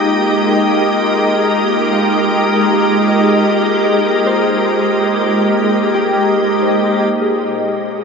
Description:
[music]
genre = ambient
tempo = 60 BPM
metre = 4/4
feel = straight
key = unclear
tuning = A4 = 440 Hz
[part]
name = soft additive organ-like pad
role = sustained chords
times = 0.0-8.0 s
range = Bb2 to Eb5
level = -13 LUFS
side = equal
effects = ensemble chorus, built-in reverb
[part]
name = Celtic harp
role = arpeggios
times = 0.0-8.0 s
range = G4 to F5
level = -21 LUFS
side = left 2 dB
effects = ping-pong delay
[part]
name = overtone-sweeping drone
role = drone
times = 0.0-7.2 s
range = Bb3 to F4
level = -24 LUFS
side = right 1 dB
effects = chorus, built-in reverb
[part]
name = drifting glass-harmonics texture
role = texture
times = 0.0-8.0 s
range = Eb4 to G5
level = -21 LUFS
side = right 2 dB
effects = chorus, built-in reverb
[sound]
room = wet huge ambient reverb, RT60 7.8 s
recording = dreamy mix soaked in reverb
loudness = -12 LUFS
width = side -5 dB against mid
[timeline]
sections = 0.0-7.1 A section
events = none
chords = 0.0 Abmaj7; 7.1 Bbm7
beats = 0.13 1.13 2.13 | 3.13 4.13 5.13 6.13 | 7.13

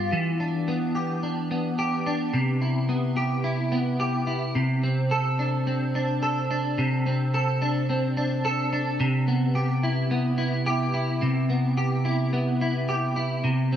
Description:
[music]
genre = dream pop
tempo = 108 BPM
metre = 4/4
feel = straight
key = C major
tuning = A4 = 440 Hz
[part]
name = clean electric guitar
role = solo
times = 0.0-13.8 s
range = G2 to A4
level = -23 LUFS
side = equal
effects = ensemble chorus, tape echo
[sound]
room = moderate plate reverb, RT60 3.4 s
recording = none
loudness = -23 LUFS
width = side -10 dB against mid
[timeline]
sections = 0.0-4.6 A section; 4.6-13.8 B section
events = none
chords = 0.1 Em7; 2.3 Cmaj7; 4.6 D5/C; 9.0 Cmaj7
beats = | 0.11 0.67 1.23 1.78 | 2.34 2.89 3.45 4.00 | 4.56 5.11 5.67 6.22 | 6.78 7.34 7.89 8.45 | 9.00 9.56 10.11 10.67 | 11.22 11.78 12.34 12.89 | 13.45

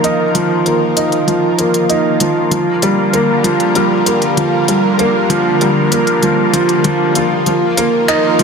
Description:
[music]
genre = piano and strings electronica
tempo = 97 BPM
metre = 4/4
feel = straight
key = G minor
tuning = A4 = 440 Hz
[part]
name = lush unison pad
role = sustained chords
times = 0.0-8.4 s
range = D3 to Bb4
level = -15 LUFS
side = left 2 dB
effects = chorus, phaser
[part]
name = warm upright piano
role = riff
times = 0.0-8.4 s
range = F3 to F4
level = -13 LUFS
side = right 2 dB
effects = tape echo
[part]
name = organic electronic drum kit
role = drums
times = 0.0-8.4 s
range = finger snaps, hi-hat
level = -18 LUFS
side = left 2 dB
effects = overdrive, high-pass filter on hats, studio reverb, high-pass filter on snare
[sound]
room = moderate huge ambient reverb, RT60 4.6 s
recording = none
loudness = -11 LUFS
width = side -5 dB against mid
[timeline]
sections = 0.0-8.4 A section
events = build-up 0.0-8.4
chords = 0.0 Ebsus2; 2.5 Gm7; 7.5 Ebsus2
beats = | 0.04 0.66 1.28 1.90 | 2.52 3.13 3.75 4.37 | 4.99 5.61 6.23 6.85 | 7.46 8.08

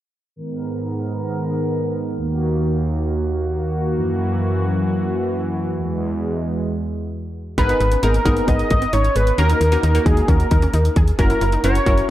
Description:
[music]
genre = synth-pop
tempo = 133 BPM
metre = 4/4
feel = straight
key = G# minor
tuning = A4 = 443 Hz
[part]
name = brassy analog pad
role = sustained chords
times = 0.4-7.6 s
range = D#2 to A#4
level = -20 LUFS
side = equal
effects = chorus, low-pass filter
[part]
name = wide unison lead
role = melody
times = 7.6-12.1 s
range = G#4 to D#5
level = -20 LUFS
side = equal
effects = none
[part]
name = funky polysynth comp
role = accompaniment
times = 7.6-12.1 s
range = A#3 to A#4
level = -24 LUFS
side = left 2 dB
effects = chorus
[part]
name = analog pluck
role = arpeggios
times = 7.6-12.0 s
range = B3 to G#4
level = -28 LUFS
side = equal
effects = chorus, tape echo
[part]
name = solid FM bass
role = bass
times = 7.6-12.0 s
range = F#1 to D#2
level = -18 LUFS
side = equal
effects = none
[part]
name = pop drum kit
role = drums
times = 7.6-12.1 s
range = hi-hat, kick drum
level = -20 LUFS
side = equal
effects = none
[sound]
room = moderate scoring stage reverb, RT60 2.0 s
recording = dark, warm production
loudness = -17 LUFS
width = side -14 dB against mid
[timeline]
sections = 0.4-7.6 A section; 7.6-12.1 B section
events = filter sweep on analog synth pad 0.4-7.6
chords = 0.4 G#madd9; 2.2 D#m; 4.0 F#7; 5.8 Eadd9; 7.6 G#madd9; 9.4 D#m; 11.2 F#7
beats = | 0.36 0.81 1.26 1.71 | 2.17 2.62 3.07 3.52 | 3.97 4.42 4.87 5.32 | 5.77 6.22 6.68 7.13 | 7.58 8.03 8.48 8.93 | 9.38 9.83 10.29 10.74 | 11.19 11.64 12.09

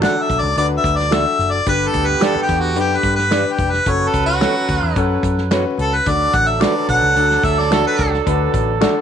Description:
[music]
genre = uptempo 1960s-style soul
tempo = 109 BPM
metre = 4/4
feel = straight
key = D major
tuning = A4 = 440 Hz
[part]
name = warm harmonica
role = melody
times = 0.0-8.1 s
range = F#4 to F#5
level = -18 LUFS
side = left 1 dB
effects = none
[part]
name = clear horn section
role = second line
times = 0.0-9.0 s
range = D3 to B4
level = -23 LUFS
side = right 12 dB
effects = none
[part]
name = clear concert grand piano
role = accompaniment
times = 0.0-9.0 s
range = G2 to B4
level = -22 LUFS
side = left 9 dB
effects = none
[part]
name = mellow electric guitar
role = stabs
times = 0.0-8.9 s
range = F#4 to D5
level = -25 LUFS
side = right 10 dB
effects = spring reverb
[part]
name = vintage muted picked electric bass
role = bass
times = 0.0-8.8 s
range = F1 to G2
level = -22 LUFS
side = equal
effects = none
[part]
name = natural country drum kit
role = drums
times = 0.0-8.9 s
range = hi-hat, kick drum, snare drum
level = -23 LUFS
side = equal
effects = none
[part]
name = finger snap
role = percussion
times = 0.0-8.9 s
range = none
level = -29 LUFS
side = left 12 dB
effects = none
[sound]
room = light reverb, studio reverb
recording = 1960s-style stereo with parts hard left and right, vinyl crackle, nothing above 10.7 kHz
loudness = -14 LUFS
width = side -8 dB against mid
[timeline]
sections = 0.0-9.0 A section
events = harmonica solo 0.0-9.0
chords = 0.0 D; 1.7 G; 3.9 F#m; 6.1 D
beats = 0.03 0.57 1.12 | 1.67 2.22 2.77 3.32 | 3.87 4.41 4.96 5.51 | 6.06 6.61 7.16 7.71 | 8.27 8.82

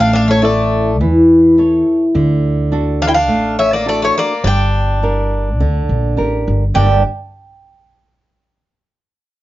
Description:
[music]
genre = greek folk, Greek bouzouki band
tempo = 104 BPM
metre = 4/4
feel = straight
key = G dorian sharp4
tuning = A4 = 440 Hz
[part]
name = Greek bouzouki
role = melody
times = 0.0-7.0 s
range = C#5 to G5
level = -17 LUFS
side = right 1 dB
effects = none
[part]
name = Greek bouzouki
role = second line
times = 0.0-7.0 s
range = A3 to E4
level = -19 LUFS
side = left 3 dB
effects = none
[part]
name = flamenco guitar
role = accompaniment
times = 0.0-7.0 s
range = G2 to E5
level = -15 LUFS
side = equal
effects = none
[part]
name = upright bass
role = bass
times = 0.0-7.0 s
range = G1 to E2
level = -16 LUFS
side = equal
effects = none
[sound]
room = light reverb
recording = nothing above 7.6 kHz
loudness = -11 LUFS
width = side -16 dB against mid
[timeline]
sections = 0.0-6.7 A section; 6.7-9.0 B section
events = none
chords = 0.0 A; 2.1 D; 4.4 Gm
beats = 0.43 1.00 1.57 | 2.15 2.72 3.30 3.87 | 4.45 5.02 5.60 6.17 | 6.75

